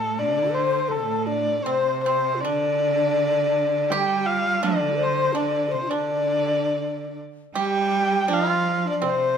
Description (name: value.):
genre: chinese traditional, Chinese chamber ensemble.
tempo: 81 BPM.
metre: 2/4.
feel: rubato.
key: D yu mode.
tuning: A4 = 441 Hz.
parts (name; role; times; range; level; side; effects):
dark erhu; melody; 0.0-9.4 s; A4 to G5; -23 LUFS; left 1 dB; none.
rich cello; second line; 0.0-9.4 s; A2 to G3; -28 LUFS; right 6 dB; none.
breathy bright low xiao; second line; 0.2-9.4 s; D4 to C5; -27 LUFS; left 7 dB; none.
pipa; second line; 1.7-9.4 s; C4 to G4; -28 LUFS; right 6 dB; none.
room: moderate recital hall reverb, RT60 1.5 s.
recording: minimal, uncompressed stereo recording.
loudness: -20 LUFS.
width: side -7 dB against mid.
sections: 0.0-7.5 A section; 7.5-9.4 B section.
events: none.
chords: none.